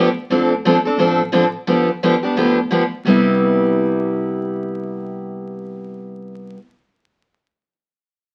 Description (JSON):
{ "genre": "acoustic string swing (jazz manouche)", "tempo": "175 BPM", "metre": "4/4", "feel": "swing 61% on 8ths", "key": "C major", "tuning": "A4 = 436 Hz", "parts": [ { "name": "picked steel-string acoustic guitar", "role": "accompaniment", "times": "0.0-6.6 s", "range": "C3 to A4", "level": "-18 LUFS", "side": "equal", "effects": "none" }, { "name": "upright bass", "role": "bass", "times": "0.0-6.5 s", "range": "G1 to D2", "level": "-36 LUFS", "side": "equal", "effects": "none" } ], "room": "moderate studio reverb, RT60 0.6 s", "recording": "very old 78 rpm record, vinyl crackle", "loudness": "-17 LUFS", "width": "mono", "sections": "0.0-3.1 A section; 3.1-5.8 B section", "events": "none", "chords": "0.3 Dm7; 1.7 G7; 3.1 Cmaj7" }